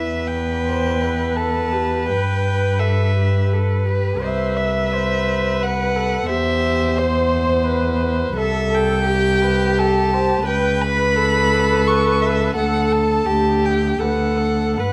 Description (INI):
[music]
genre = classical, slow romantic movement for string quartet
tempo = 74-89 BPM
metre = 3/4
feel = rubato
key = unclear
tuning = A4 = 439 Hz
[part]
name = muted violin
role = melody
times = 0.0-14.9 s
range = B4 to C#6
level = -26 LUFS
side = equal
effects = none
[part]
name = muted violin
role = second line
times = 0.0-14.9 s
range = G4 to C5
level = -25 LUFS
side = equal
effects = none
[part]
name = muted cello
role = bass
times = 0.0-14.9 s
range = C2 to G2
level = -23 LUFS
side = equal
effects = none
[part]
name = muted viola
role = accompaniment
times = 0.7-14.9 s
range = G4 to E5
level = -27 LUFS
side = equal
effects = none
[sound]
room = light reverb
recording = close, detailed microphones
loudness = -19 LUFS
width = mono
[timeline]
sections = 0.0-14.9 A section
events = none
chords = 0.0 Em; 2.1 Em/G; 4.2 Cmaj7; 6.3 C/E; 8.4 Am7/C; 10.5 A/C#; 12.6 D; 13.3 G5/D; 14.0 D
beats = 0.66 1.38 | 2.09 2.80 3.53 | 4.23 4.93 5.62 | 6.30 6.98 7.66 | 8.37 9.07 9.77 | 10.48 11.17 11.88 | 12.58 13.28 14.00 | 14.78